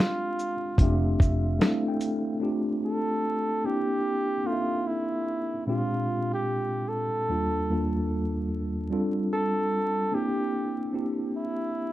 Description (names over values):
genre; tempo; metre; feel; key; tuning
lo-fi hip hop; 74 BPM; 4/4; swing 65% on 16ths; F major; A4 = 442 Hz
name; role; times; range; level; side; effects
warm flugelhorn; melody; 0.0-11.9 s; E4 to A4; -30 LUFS; right 1 dB; low-pass filter
mellow tine electric piano; accompaniment; 0.0-11.9 s; Eb2 to G5; -28 LUFS; equal; medium stereo tremolo, low-pass filter
dusty soul sampler-style drum kit; drums; 0.0-2.3 s; hi-hat, kick drum, shaker, snare drum; -23 LUFS; equal; vintage 12-bit sampler grit
vintage muted fingered electric bass; bass; 0.8-1.6 s; F1; -25 LUFS; equal; none
room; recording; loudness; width
moderate studio ambience, RT60 0.5 s; dark, warm production, vinyl crackle; -25 LUFS; side -15 dB against mid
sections
0.0-2.4 A section; 2.4-11.9 B section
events
tine electric piano fill 0.8-2.4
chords
0.0 Bb13 (rootless); 0.8 Fmaj13; 2.4 F6; 3.6 C7; 5.7 Bb13; 7.3 Ebmaj9#11; 8.9 F6; 10.1 C7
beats
0.80 1.61 | 2.42 3.23 4.04 4.85 | 5.66 6.47 7.28 8.09 | 8.90 9.72 10.53 11.34